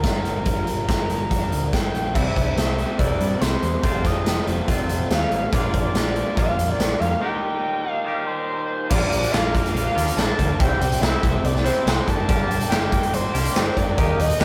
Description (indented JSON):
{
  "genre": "indie rock",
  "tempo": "142 BPM",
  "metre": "4/4",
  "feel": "straight",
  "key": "G minor",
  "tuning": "A4 = 436 Hz",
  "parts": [
    { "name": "overdriven synth lead", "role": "melody", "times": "0.0-14.4 s", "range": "Bb4 to A5", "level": "-29 LUFS", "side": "equal", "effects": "distortion, chorus, slapback echo" },
    { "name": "raw garage guitar", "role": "riff", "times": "0.0-14.4 s", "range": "Eb3 to G4", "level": "-32 LUFS", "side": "equal", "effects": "overdrive" },
    { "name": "growling picked electric bass", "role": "bass", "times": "0.0-14.4 s", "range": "F1 to G2", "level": "-28 LUFS", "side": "equal", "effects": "overdrive" },
    { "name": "big rock drum kit", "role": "drums", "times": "0.0-14.4 s", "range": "crash cymbal, hi-hat, kick drum, snare drum", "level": "-24 LUFS", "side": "equal", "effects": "none" },
    { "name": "overdriven electric guitar", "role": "riff", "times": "2.1-14.4 s", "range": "F2 to G4", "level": "-32 LUFS", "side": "equal", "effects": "none" },
    { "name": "combo organ", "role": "sustained chords", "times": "8.9-14.4 s", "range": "Bb4 to Eb6", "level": "-35 LUFS", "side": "equal", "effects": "none" }
  ],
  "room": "light reverb",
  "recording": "rough rehearsal-room recording, warm saturation",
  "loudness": "-22 LUFS",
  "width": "mono",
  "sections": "0.0-2.1 A section; 2.1-8.9 B section; 8.9-14.4 C section",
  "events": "break 7.2-8.9",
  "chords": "0.0 Gm7; 2.1 C; 3.8 F; 5.5 Bb; 7.2 Eb/Bb; 8.9 Bb; 10.6 Cadd9; 12.1 Gm"
}